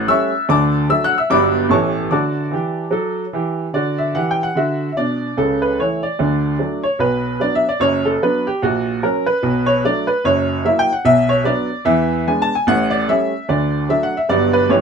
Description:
jazz, stride piano; 148 BPM; 4/4; swing 58% on 8ths; D major; A4 = 438 Hz
clear upright piano; solo; 0.0-14.8 s; F#1 to F#6; -15 LUFS; right 1 dB
moderate studio reverb, RT60 0.5 s; minimal, uncompressed stereo recording; -15 LUFS; side -6 dB against mid
0.0-3.7 A section; 3.7-14.8 A section
0.5 D; 1.3 Gmaj7; 1.7 A7; 2.1 D; 5.4 A/C#; 6.2 D; 7.0 Bm; 8.6 F#/A#; 9.4 Bm7; 10.2 F#7; 11.0 Bm; 11.9 E7; 12.7 A7; 13.5 D; 14.3 Gmaj7
0.08 | 0.49 0.89 1.30 1.71 | 2.11 2.52 2.93 3.33 | 3.74 4.14 4.55 4.96 | 5.36 5.77 6.18 6.58 | 6.99 7.39 7.80 8.21 | 8.61 9.02 9.43 9.83 | 10.24 10.64 11.05 11.46 | 11.86 12.27 12.67 13.08 | 13.48 13.89 14.30 14.70

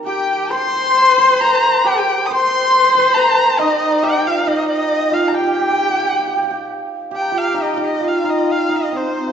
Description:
chinese traditional, Chinese chamber ensemble; 67 BPM; 2/4; rubato; G jue mode; A4 = 439 Hz
hammered dulcimer; second line; 0.0-9.3 s; C4 to C5; -21 LUFS; right 3 dB
warm horsehead fiddle; second line; 0.0-9.3 s; C4 to C5; -20 LUFS; left 2 dB
dark erhu; melody; 0.1-9.3 s; C5 to Eb6; -17 LUFS; equal
large dizi; second line; 0.1-9.3 s; C5 to C6; -21 LUFS; left 5 dB
wet recital hall reverb, RT60 1.7 s; recorded in a church or concert hall, nothing above 7.8 kHz; -13 LUFS; side -8 dB against mid
0.0-7.1 A section; 7.1-9.3 B section
| 0.05 0.96 | 1.85 2.74 | 3.60 4.46 | 5.33 6.22 | 7.12 8.03 | 8.93

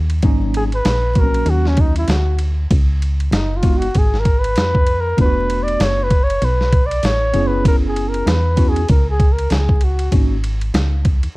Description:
hip hop, jazz-hop; 97 BPM; 4/4; swing 59% on 16ths; G# minor; A4 = 442 Hz
solid FM bass; bass; 0.0-11.3 s; E1 to E#2; -18 LUFS; equal
dusty soul sampler-style drum kit; drums; 0.1-11.4 s; hi-hat, kick drum, ride cymbal, snare drum; -17 LUFS; equal
tine electric piano; accompaniment; 0.2-10.4 s; F#3 to G#4; -23 LUFS; equal; medium stereo tremolo
breathy flugelhorn; melody; 0.6-10.1 s; C#4 to D5; -20 LUFS; equal
digital ambience; vinyl crackle; -14 LUFS; side -21 dB against mid
0.2-11.4 A section
flugelhorn solo 0.2-11.4
0.2 G#9sus4; 2.7 C#7sus4; 5.2 E9sus4; 7.3 F#9sus4; 10.1 G#9sus4
| 0.23 0.85 1.46 2.08 | 2.70 3.32 3.94 4.56 | 5.18 5.79 6.41 7.03 | 7.65 8.27 8.89 9.51 | 10.12 10.74

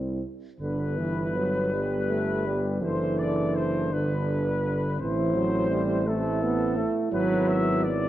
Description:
classical, hymn-like piece for brass band; 55 BPM (dotted quarters); 6/8; uneven beats, rubato; G major; A4 = 440 Hz
mellow French horn section; second line; 0.0-8.1 s; E4 to B4; -31 LUFS; right 5 dB
mellow euphonium; accompaniment; 0.0-8.1 s; B3 to D4; -34 LUFS; left 3 dB
mellow trombone; accompaniment; 0.0-7.9 s; D3 to B3; -28 LUFS; right 1 dB
mellow tuba; bass; 0.0-8.1 s; F#1 to C2; -30 LUFS; equal
mellow trumpet section; melody; 0.6-8.1 s; A4 to E5; -32 LUFS; left 4 dB
moderate concert hall reverb, RT60 2.0 s; worn, warbling old tape, cassette tape, warbly pitch drift; -24 LUFS; side -13 dB against mid
0.6-8.1 A section
0.0 C; 0.6 G; 2.8 D7/F#; 3.9 G; 5.0 Am; 7.1 E7/G#
| 0.60 1.73 | 2.81 3.91 | 4.99 6.07 | 7.13

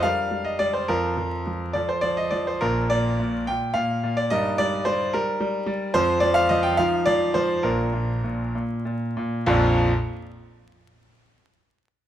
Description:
classical-period piano sonatina; 64-74 BPM (dotted quarters); 6/8; rubato; Bb major; A4 = 440 Hz
bright concert grand piano; solo; 0.0-9.9 s; Bb1 to G5; -21 LUFS; equal
moderate recital hall reverb, RT60 1.6 s; close, detailed microphones, vinyl crackle; -21 LUFS; side -11 dB against mid
0.0-9.5 A section; 9.5-11.2 B section
slowing down 5.1-9.5
0.0 Gm; 0.9 N.C.; 1.8 F; 2.6 Bb; 4.3 Eb/G; 5.9 F5; 6.8 Cmadd11/F; 7.6 Bb
0.04 | 0.89 1.75 | 2.61 3.47 | 4.31 5.13 | 5.94 6.78 | 7.64 8.54 | 9.47

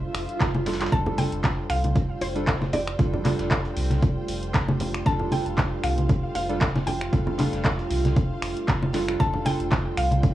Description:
deep house; 116 BPM; 4/4; swing 55% on 16ths; F major; A4 = 440 Hz
warm analog keys; stabs; 0.0-10.3 s; G3 to A4; -31 LUFS; right 2 dB; chorus, sidechain pumping, analog delay
swell; sound effects; 0.1-0.9 s; -33 LUFS; right 1 dB
rich studio string section; texture; 0.0-10.3 s; F4 to G5; -39 LUFS; equal; sidechain pumping
round analog bass; bass; 0.1-10.3 s; F1 to C2; -30 LUFS; equal; sidechain pumping
dusty soul sampler-style drum kit; drums; 0.1-10.3 s; hi-hat, snare drum; -41 LUFS; equal; high-pass filter on hats, high-pass filter on snare, high-pass filter on room
punchy analog drum machine; drums; 0.1-10.3 s; finger snaps, handclaps, hi-hat; -30 LUFS; equal
electronic kick drum; drums; 0.4-10.3 s; -23 LUFS; equal
congas and bongos; percussion; 0.5-10.2 s; -27 LUFS; equal
mallet-like synth pluck; melody; 0.9-10.3 s; C5 to A5; -30 LUFS; equal; chorus, analog delay
warbly tape-like pad; sustained chords; 0.9-10.3 s; A3 to G5; -36 LUFS; right 2 dB; chorus, built-in reverb, vintage 12-bit sampler grit, sidechain pumping
digital ambience; cassette tape, small room ambience; -22 LUFS; side -14 dB against mid
0.0-10.3 A section
fade-in on string section 0.0-10.3; swell 0.1-0.9; drum fill 0.4-0.9
0.0 F69
0.41 | 0.92 1.44 1.96 2.47 | 2.99 3.51 4.03 4.54 | 5.06 5.58 6.09 6.61 | 7.13 7.65 8.16 8.68 | 9.20 9.71 10.23

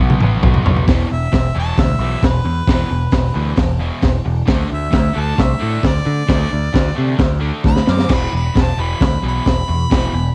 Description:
garage rock duo or trio; 133 BPM; 4/4; straight; A4 = 440 Hz
overdriven electric guitar; riff; 0.0-10.3 s; E2 to D4; -25 LUFS; equal; cassette tape
growling picked electric bass; bass; 0.0-10.3 s; E1 to D3; -21 LUFS; equal; overdrive
crunchy breakbeat drum kit; drums; 0.1-10.0 s; crash cymbal, hi-hat, kick drum, snare drum, toms; -18 LUFS; equal; cassette tape
bright harmonica; melody; 1.1-10.3 s; B4 to D6; -27 LUFS; equal; overdrive, cassette tape
little or no reverb; home recording on cassette; -16 LUFS; mono
0.9-10.3 A section
drum fill 0.0-0.9, 7.6-8.1; harmonica solo 0.9-10.3
0.0 B5; 0.9 E5; 4.5 D5; 8.1 E5
0.43 | 0.88 1.33 1.78 2.23 | 2.68 3.13 3.58 4.03 | 4.48 4.93 5.39 5.84 | 6.29 6.74 7.20 7.65 | 8.10 8.55 9.01 9.46 | 9.91

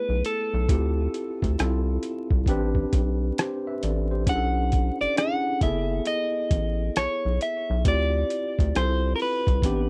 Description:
R&B, neo-soul; 67 BPM; 4/4; swing 63% on 16ths; A4 = 439 Hz
electric guitar at the edge of break-up; melody; 0.0-9.9 s; A4 to F#5; -30 LUFS; equal
tine electric piano; accompaniment; 0.0-9.9 s; A3 to E5; -32 LUFS; equal; overdrive
rubbery square bass; bass; 0.1-9.9 s; F#1 to D2; -28 LUFS; equal
boom bap sampler-style drum kit; drums; 0.2-9.9 s; hi-hat, kick drum, rim click; -27 LUFS; equal
little or no reverb; dry, close 1970s-style studio recording, vinyl crackle; -25 LUFS; mono
0.0-9.9 A section
0.0 F#m11 (rootless); 0.7 Dm11; 2.5 Am11; 4.3 Bm11; 5.6 F#m11; 7.8 Dm11
| 0.69 1.58 2.48 3.37 | 4.27 5.16 6.06 6.95 | 7.85 8.74 9.64

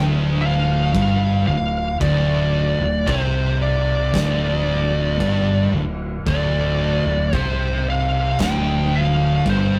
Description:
stoner and doom metal; 56 BPM; 4/4; straight; D minor; A4 = 440 Hz
fuzz lead guitar; melody; 0.0-9.8 s; C5 to G5; -26 LUFS; equal; distortion
thick fuzz guitar; riff; 0.0-9.8 s; D2 to C3; -27 LUFS; equal; distortion
thick fuzz guitar; riff; 0.0-9.8 s; D2 to C3; -23 LUFS; equal; distortion
fingered electric bass; bass; 0.0-9.8 s; D1 to C2; -27 LUFS; equal; overdrive
oversized low-tuned drum kit; drums; 0.9-9.7 s; crash cymbal, kick drum, snare drum; -30 LUFS; equal
light reverb; rough rehearsal-room recording, tube saturation; -19 LUFS; mono
0.0-9.8 A section
0.0 Dm
0.95 | 2.01 3.07 4.13 5.20 | 6.26 7.32 8.38 9.44

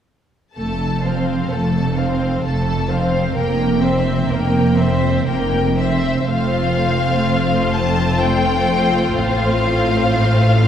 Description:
classical, slow romantic movement for symphony orchestra; 64 BPM; 3/4; rubato; F major; A4 = 440 Hz
clear symphonic violin section; melody; 0.6-10.7 s; E5 to A5; -23 LUFS; left 4 dB
rich symphonic violin section; second line; 0.6-10.7 s; F4 to C5; -23 LUFS; left 2 dB
clear symphonic viola section; accompaniment; 0.6-10.7 s; A3 to C4; -22 LUFS; right 1 dB
rich studio double bass section; bass; 0.6-10.7 s; F1 to A1; -21 LUFS; right 2 dB
rich symphonic cello section; bass; 0.6-10.7 s; F2 to A2; -21 LUFS; right 1 dB
wet scoring stage reverb, RT60 1.9 s; heard from further back in the room; -15 LUFS; side -9 dB against mid
0.6-6.3 A section; 6.3-10.7 B section
0.6 F; 3.4 C7/F; 6.3 F; 9.2 F/A
| 0.57 1.52 2.44 | 3.37 4.29 5.27 | 6.29 7.27 8.22 | 9.16 10.10

